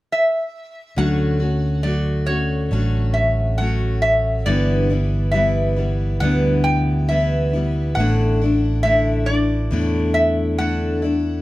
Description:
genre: acoustic folk duo or small band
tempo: 69 BPM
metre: 4/4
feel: straight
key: unclear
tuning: A4 = 440 Hz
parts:
  - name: metal-body resonator slide guitar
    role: melody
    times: 0.1-11.4 s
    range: C#5 to G5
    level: -22 LUFS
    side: equal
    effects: none
  - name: picked steel-string acoustic guitar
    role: accompaniment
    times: 1.0-11.4 s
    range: G2 to F#4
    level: -22 LUFS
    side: left 2 dB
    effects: none
  - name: fingered electric bass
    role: bass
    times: 1.0-11.4 s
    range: G1 to E2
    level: -20 LUFS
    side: equal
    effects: none
room: light reverb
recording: none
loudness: -17 LUFS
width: side -17 dB against mid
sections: 1.0-11.4 A section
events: none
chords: 0.0 N.C.; 1.0 Dmaj7; 4.5 G6; 8.0 Asus4

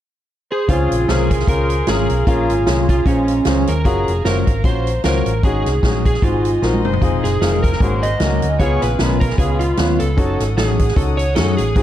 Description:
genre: uptempo gospel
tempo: 152 BPM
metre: 4/4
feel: swing 56% on 8ths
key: Db major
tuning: A4 = 437 Hz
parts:
  - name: electric slide guitar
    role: melody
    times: 0.5-11.8 s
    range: Db4 to Eb5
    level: -21 LUFS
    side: right 3 dB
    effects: none
  - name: mellow horn section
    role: melody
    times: 0.5-3.8, 6.9-10.1 s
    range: Ab3 to C5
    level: -26 LUFS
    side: left 4 dB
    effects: none
  - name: clear upright piano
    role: accompaniment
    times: 0.7-11.8 s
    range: Ab2 to Db5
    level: -22 LUFS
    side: left 2 dB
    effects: none
  - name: warm chamber string section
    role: sustained chords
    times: 0.7-11.8 s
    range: Eb5 to Eb6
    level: -32 LUFS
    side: right 1 dB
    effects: none
  - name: hollow-body short-scale fingered electric bass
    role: bass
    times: 0.7-11.8 s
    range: F1 to Gb2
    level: -19 LUFS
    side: equal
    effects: none
  - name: swinging big-band drum kit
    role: drums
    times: 0.7-11.8 s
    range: hi-hat, kick drum, snare drum, toms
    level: -19 LUFS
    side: equal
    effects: none
room: light reverb, small room ambience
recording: dark, warm production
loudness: -14 LUFS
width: side -12 dB against mid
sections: 0.7-11.8 A section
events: drum fill 6.6-7.0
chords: 0.0 N.C.; 0.7 Dbmaj7; 2.3 Bbm7; 3.9 Gbmaj7; 5.4 Ab7sus4; 6.2 Ab7; 7.0 Fm7; 7.8 Ab9sus4; 8.6 Db7; 10.2 Gbm6

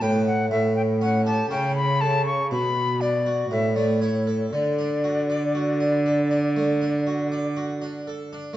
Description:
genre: classical, baroque-style sonata movement with continuo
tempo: 59 BPM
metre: 4/4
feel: straight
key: D major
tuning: A4 = 440 Hz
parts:
  - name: bright concert flute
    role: melody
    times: 0.0-7.5 s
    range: C#5 to C#6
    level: -26 LUFS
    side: left 3 dB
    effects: none
  - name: harpsichord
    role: accompaniment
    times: 0.0-8.6 s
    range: A2 to D5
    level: -27 LUFS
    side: right 1 dB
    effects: none
  - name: rich cello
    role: bass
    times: 0.0-8.4 s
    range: A2 to D3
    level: -24 LUFS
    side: right 2 dB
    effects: none
room: moderate recital hall reverb, RT60 1.7 s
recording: dark, warm production, nothing above 7.7 kHz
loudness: -20 LUFS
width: side -13 dB against mid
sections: 0.0-8.6 A section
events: none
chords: 0.0 G; 0.5 A7; 2.5 Bm; 3.5 A; 4.5 D

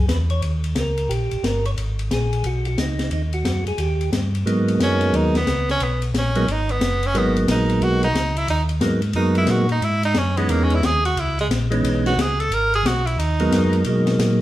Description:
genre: soul jazz organ trio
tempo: 179 BPM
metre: 4/4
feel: swing 64% on 8ths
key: G# minor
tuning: A4 = 440 Hz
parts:
  - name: percussive tonewheel organ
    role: melody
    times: 0.0-14.4 s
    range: E3 to C#5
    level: -22 LUFS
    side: right 1 dB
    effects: slow rotary speaker
  - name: mellow tonewheel organ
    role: bass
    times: 0.0-14.4 s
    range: F#1 to B2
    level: -22 LUFS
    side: equal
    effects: chorus vibrato, slow rotary speaker
  - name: open jazz drum kit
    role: drums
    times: 0.1-14.3 s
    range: hi-hat, ride cymbal, snare drum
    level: -26 LUFS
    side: left 2 dB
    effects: none
  - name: edgy tenor saxophone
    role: melody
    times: 4.8-13.9 s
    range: G#3 to A#4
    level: -22 LUFS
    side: right 1 dB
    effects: none
room: wet studio reverb, RT60 0.9 s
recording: heard from further back in the room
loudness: -18 LUFS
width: side -14 dB against mid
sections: 0.0-4.5 A section; 4.5-14.4 B section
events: tenor saxophone solo 4.5-14.4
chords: 0.4 D#7; 1.8 G#m7; 3.8 D#; 4.5 G#m7; 9.8 C#m7; 12.5 G#m7

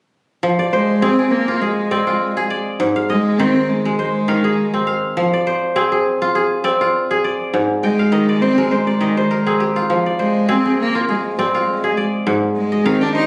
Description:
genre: west african traditional, West African string and xylophone music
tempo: 101 BPM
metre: 4/4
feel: swing 55% on 16ths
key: F dorian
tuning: A4 = 440 Hz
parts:
  - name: kora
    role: arpeggios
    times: 0.4-13.3 s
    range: Ab2 to G5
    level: -19 LUFS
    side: equal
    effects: none
  - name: rich cello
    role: melody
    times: 0.7-13.3 s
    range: Ab3 to Eb4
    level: -20 LUFS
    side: equal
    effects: none
room: moderate recital hall reverb, RT60 1.6 s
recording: recorded on a phone in the room, studio reverb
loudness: -17 LUFS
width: mono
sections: 0.4-13.3 A section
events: kora fill 7.8-9.9, 12.7-13.3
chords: 0.4 Fm; 2.8 Ab; 5.2 Fm; 7.5 Ab; 9.9 Fm; 12.3 Ab

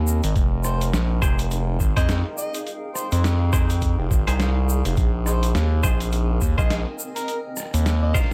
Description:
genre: glitch hop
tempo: 104 BPM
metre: 4/4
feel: swing 58% on 16ths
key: F minor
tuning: A4 = 438 Hz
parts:
  - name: gritty driven synth bass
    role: bass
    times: 0.0-8.1 s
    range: F1 to F2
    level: -23 LUFS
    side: equal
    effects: overdrive
  - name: granular cloud pad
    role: texture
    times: 0.0-8.3 s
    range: C4 to Ab5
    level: -37 LUFS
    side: equal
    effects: built-in reverb, sidechain pumping
  - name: egg shaker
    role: percussion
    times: 0.1-8.3 s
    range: none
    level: -37 LUFS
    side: equal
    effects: none
  - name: boom bap sampler-style drum kit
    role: drums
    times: 0.2-8.3 s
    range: hi-hat, rim click, snare drum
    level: -33 LUFS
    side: equal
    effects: none
  - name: electronic kick drum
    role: drums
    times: 0.4-8.3 s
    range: none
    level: -24 LUFS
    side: equal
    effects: none
  - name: overdriven harmonica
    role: melody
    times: 0.6-8.2 s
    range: Eb4 to Eb5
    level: -35 LUFS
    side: equal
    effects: delay
  - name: semi-hollow electric guitar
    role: stabs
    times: 1.2-8.3 s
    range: Eb4 to C5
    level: -34 LUFS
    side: equal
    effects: sidechain pumping, delay
room: little or no reverb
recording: none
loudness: -22 LUFS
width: mono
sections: 0.0-8.3 A section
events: none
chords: 0.4 Fm9; 5.0 Bb9sus4; 7.3 Eb69

